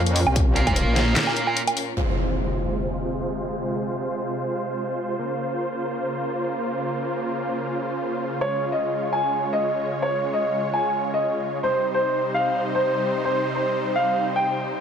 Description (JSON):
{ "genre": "heavy wobble dubstep", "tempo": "149 BPM", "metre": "4/4", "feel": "swing 54% on 16ths, half-time", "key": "F minor", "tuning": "A4 = 440 Hz", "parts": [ { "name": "supersaw chords", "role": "sustained chords", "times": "0.0-14.8 s", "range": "Bb2 to Db5", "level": "-26 LUFS", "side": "equal", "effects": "sidechain pumping, low-pass filter" }, { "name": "metallic wobble bass", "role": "bass", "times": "0.0-1.1 s", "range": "Bb1 to F2", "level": "-21 LUFS", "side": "equal", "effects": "chorus, overdrive" }, { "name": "dubstep drum kit", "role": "drums", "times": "0.1-2.1 s", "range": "crash cymbal, handclaps, hi-hat, snare drum, woodblock", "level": "-23 LUFS", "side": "right 1 dB", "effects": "low-pass filter on hats, low-pass filter on perc, low-pass filter on snare, low-pass filter on cymbals, low-pass filter on room" }, { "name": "electronic kick drum", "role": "drums", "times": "0.4-0.7 s", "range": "none", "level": "-22 LUFS", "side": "equal", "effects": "none" }, { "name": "tight distorted guitar", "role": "stabs", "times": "0.6-1.6 s", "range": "Bb3 to Bb4", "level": "-28 LUFS", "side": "right 2 dB", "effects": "distortion, ping-pong delay" }, { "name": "impact", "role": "sound effects", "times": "2.0-3.6 s", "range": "none", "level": "-28 LUFS", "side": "equal", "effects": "none" }, { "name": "dark grand piano", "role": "melody", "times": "8.4-14.8 s", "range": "C5 to Ab5", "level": "-22 LUFS", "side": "equal", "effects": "ping-pong delay" } ], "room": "moderate lush hall reverb, RT60 2.0 s", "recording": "none", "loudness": "-22 LUFS", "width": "side -7 dB against mid", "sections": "0.0-2.0 A section; 2.0-14.8 B section", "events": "drop 0.0-2.0; break 1.2-2.0; impact 2.0-3.6; filter sweep on supersaw synth 2.0-14.8", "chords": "0.0 Bbmadd9; 2.0 Fm; 5.2 Bbmadd9; 8.4 Db; 11.6 Cm", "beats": "| 0.36 0.76 1.16 1.57 | 1.97 2.37 2.77 3.18 | 3.58 3.98 4.38 4.79 | 5.19 5.59 6.00 6.40 | 6.80 7.20 7.61 8.01 | 8.41 8.81 9.22 9.62 | 10.02 10.43 10.83 11.23 | 11.63 12.04 12.44 12.84 | 13.24 13.65 14.05 14.45" }